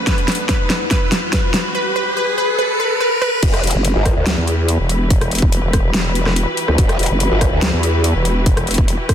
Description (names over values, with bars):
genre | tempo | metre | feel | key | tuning
heavy wobble dubstep | 143 BPM | 4/4 | half-time | E minor | A4 = 440 Hz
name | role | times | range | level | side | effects
wide unison pluck | melody | 0.0-3.4 s | B4 | -20 LUFS | equal | digital delay
warm symphonic string section | sustained chords | 0.0-9.1 s | E2 to F#5 | -24 LUFS | left 1 dB | sidechain pumping, low-pass filter
riser | sound effects | 0.0-3.4 s | none | -22 LUFS | equal | none
dubstep drum kit | drums | 0.1-9.1 s | crash cymbal, hi-hat, rim click, snare drum | -20 LUFS | equal | studio reverb
electronic kick drum | drums | 0.1-9.1 s | none | -16 LUFS | equal | studio reverb
growl bass | bass | 3.4-7.7 s | E1 to D2 | -17 LUFS | equal | chorus, overdrive
vowel-sweep wobble bass | bass | 3.7-9.0 s | E1 to E2 | -17 LUFS | equal | chorus, overdrive
room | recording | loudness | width
light reverb | dense, heavily limited modern master | -14 LUFS | side -9 dB against mid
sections
0.0-3.4 A section; 3.4-9.1 B section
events
build-up 0.0-3.4; drum fill 0.0-1.7; riser 0.0-3.4; drop 3.4-9.1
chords
0.0 Emadd9